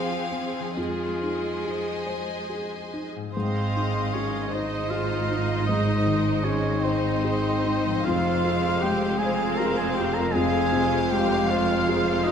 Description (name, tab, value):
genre	cinematic, emotional film score for orchestra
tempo	44-54 BPM (dotted quarters)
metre	6/8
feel	rubato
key	unclear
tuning	A4 = 439 Hz
part	mellow duduk	melody	0.0-12.3 s	C4 to Bb4	-30 LUFS	left 1 dB	none
part	rich studio violin section	melody	0.0-12.3 s	C5 to Ab5	-33 LUFS	left 4 dB	none
part	clear studio violin section	second line	0.0-12.3 s	C5 to F5	-34 LUFS	left 3 dB	none
part	clear studio viola section	accompaniment	0.0-12.3 s	Ab3 to Ab4	-34 LUFS	left 1 dB	none
part	felt-muted upright piano	accompaniment	0.0-12.3 s	F2 to C5	-29 LUFS	left 1 dB	none
part	concert harp	arpeggios	0.0-11.9 s	Ab2 to C6	-37 LUFS	left 3 dB	none
part	clear studio cello section	bass	0.0-12.3 s	F2 to Ab3	-32 LUFS	right 4 dB	none
part	clear oboe	second line	3.3-12.3 s	C5 to Bb5	-30 LUFS	right 3 dB	none
part	mellow French horn section	sustained chords	3.3-12.3 s	Ab3 to F4	-32 LUFS	left 5 dB	none
part	clear studio double bass section	bass	3.3-12.3 s	F1 to Ab1	-31 LUFS	right 5 dB	none
room	wet scoring stage reverb, RT60 1.8 s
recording	minimal, uncompressed stereo recording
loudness	-22 LUFS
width	side -7 dB against mid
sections	0.0-3.3 A section; 3.3-12.3 A section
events	none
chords	0.0 Fm; 3.3 Ab; 8.0 Fm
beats	| 0.77 2.07 | 3.34 4.52 | 5.67 6.83 | 8.04 9.20 | 10.33 11.48